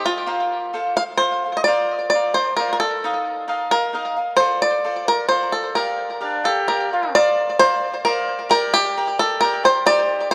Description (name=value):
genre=mexican folk, mariachi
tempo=132 BPM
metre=3/4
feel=rubato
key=Bb major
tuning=A4 = 445 Hz
part: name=bluegrass banjo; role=melody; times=0.0-10.3 s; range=F4 to F5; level=-21 LUFS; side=equal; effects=tape echo
part: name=cavaquinho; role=accompaniment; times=0.0-10.3 s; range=Eb4 to G5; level=-26 LUFS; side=equal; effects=none
part: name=warm trumpet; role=second line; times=6.2-7.1 s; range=D4 to G4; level=-28 LUFS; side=equal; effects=none
room=moderate echo chamber reverb, RT60 2.7 s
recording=none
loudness=-20 LUFS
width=mono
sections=0.0-7.1 A section; 7.1-10.3 A section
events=none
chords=0.3 Fsus4; 0.7 F; 1.7 Bbadd9; 3.0 Ebsus2; 4.4 F6; 5.8 Bb6; 7.1 Bbadd9; 8.5 Gm